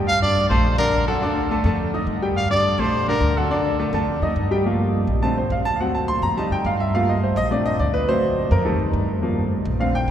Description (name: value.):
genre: latin, salsa.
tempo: 210 BPM.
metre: 4/4.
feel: straight.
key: G minor.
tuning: A4 = 441 Hz.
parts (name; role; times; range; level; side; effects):
bright upright piano; accompaniment; 0.0-10.1 s; D3 to Eb6; -21 LUFS; equal; none.
upright bass; bass; 0.0-10.1 s; Bb1 to G2; -23 LUFS; equal; none.
warm trumpet; melody; 0.1-3.9 s; A4 to F5; -24 LUFS; equal; none.
room: wet cathedral reverb, RT60 6.7 s.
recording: recorded in a church or concert hall.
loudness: -18 LUFS.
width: side -10 dB against mid.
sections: 0.0-4.6 A section; 4.6-10.1 B section.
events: upright piano solo 4.6-10.1.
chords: 0.1 Gm; 0.6 Bbmaj7; 1.2 D5; 1.8 F7; 2.4 Gm; 2.9 Bbmaj7; 3.5 D5; 4.1 F7; 4.6 Gm7; 5.2 Bbmaj7; 5.8 D7; 6.4 F7; 6.9 Gm7; 7.5 Bbmaj7; 8.1 D7; 8.7 F7; 9.2 Gm7.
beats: | 0.07 0.36 0.64 0.93 | 1.22 1.50 1.79 2.07 | 2.36 2.64 2.93 3.21 | 3.50 3.79 4.07 4.36 | 4.65 4.93 5.22 5.51 | 5.79 6.08 6.37 6.65 | 6.94 7.22 7.51 7.80 | 8.09 8.37 8.66 8.94 | 9.23 9.52 9.80 10.09.